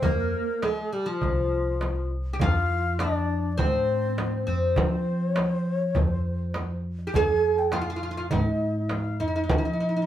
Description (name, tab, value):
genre	Arabic maqam ensemble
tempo	102 BPM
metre	4/4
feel	straight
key	F maqam rast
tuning	A4 = 439 Hz
part	oud	melody	0.0-10.1 s	F3 to Ab4+50c	-27 LUFS	right 1 dB	none
part	breathy reedy low ney	second line	0.0-10.1 s	F4 to Ab5+47c	-31 LUFS	left 2 dB	none
part	upright bass	bass	0.0-10.1 s	C2 to F3	-28 LUFS	equal	none
part	darbuka	percussion	0.0-9.7 s	none	-32 LUFS	right 3 dB	none
part	frame drum	percussion	0.0-9.6 s	none	-28 LUFS	equal	none
room	wet studio reverb, RT60 0.6 s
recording	band playing live in one room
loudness	-23 LUFS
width	side -11 dB against mid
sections	0.0-2.4 A section; 2.4-10.1 B section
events	none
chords	none